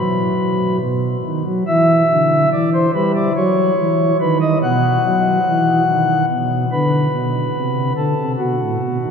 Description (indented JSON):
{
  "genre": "classical, chorale-style piece for pipe organ",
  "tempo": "72 BPM",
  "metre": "3/4",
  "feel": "straight",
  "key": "unclear",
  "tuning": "A4 = 441 Hz",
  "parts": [
    { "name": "pipe organ, flutes", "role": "solo", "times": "0.0-9.1 s", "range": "A2 to F#5", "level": "-14 LUFS", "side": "equal", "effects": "none" }
  ],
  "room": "wet cathedral reverb, RT60 7.3 s",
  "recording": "recorded in a church or concert hall",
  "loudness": "-14 LUFS",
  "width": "side -6 dB against mid",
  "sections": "0.0-9.1 A section",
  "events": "none",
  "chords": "0.0 B; 1.7 Em; 3.4 F#5; 4.2 B; 6.7 Bm; 7.5 Am/C; 8.4 B7"
}